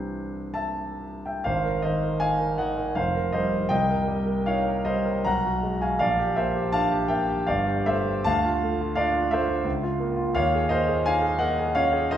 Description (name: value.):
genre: classical, impressionist solo piano.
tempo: 57-87 BPM.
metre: 3/4.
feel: rubato.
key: unclear.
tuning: A4 = 441 Hz.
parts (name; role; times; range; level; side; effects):
clear concert grand piano; solo; 0.0-12.2 s; F1 to Bb5; -22 LUFS; equal; none.
room: wet recital hall reverb, RT60 1.8 s.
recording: heard from further back in the room.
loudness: -22 LUFS.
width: side -10 dB against mid.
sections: 0.0-1.5 A section; 1.5-12.2 B section.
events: none.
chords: 0.0 Cadd9; 1.5 Ab69; 3.0 F9sus4; 3.7 Cm7; 5.3 B5; 6.0 Bb69; 7.5 G9sus4; 8.3 Dm7; 9.7 Db6; 10.4 Eb11.